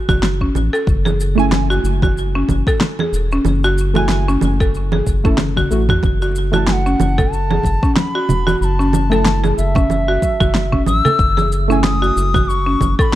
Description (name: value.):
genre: organic downtempo.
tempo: 93 BPM.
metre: 4/4.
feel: swing 57% on 16ths.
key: F# minor.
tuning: A4 = 441 Hz.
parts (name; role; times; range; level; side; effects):
deep mellow chord stab; accompaniment; 0.0-13.2 s; A3 to A5; -23 LUFS; right 3 dB; chorus, sidechain pumping, digital delay.
buzzing marimba with hard mallets; arpeggios; 0.1-13.2 s; C#4 to A4; -20 LUFS; equal; digital delay.
round analog bass; bass; 0.1-13.0 s; E1 to A1; -18 LUFS; equal; none.
deep house drum kit; drums; 0.1-13.1 s; congas, shaker, snare drum, toms; -21 LUFS; right 2 dB; studio reverb.
electronic kick drum; drums; 0.1-13.1 s; none; -18 LUFS; equal; studio reverb.
bright reedy bansuri; melody; 6.7-13.2 s; E5 to E6; -20 LUFS; left 1 dB; digital delay.
bongos and congas; percussion; 7.0-13.2 s; none; -22 LUFS; right 3 dB; none.
room: small room ambience.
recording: dark, warm production.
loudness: -13 LUFS.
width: side -14 dB against mid.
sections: 0.0-13.2 A section.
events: drum fill 5.4-6.0.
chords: 0.0 F#m7.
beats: 0.22 | 0.87 1.51 2.16 2.81 | 3.45 4.09 4.74 5.38 | 6.03 6.68 7.32 7.97 | 8.61 9.26 9.90 10.55 | 11.19 11.84 12.48 13.13.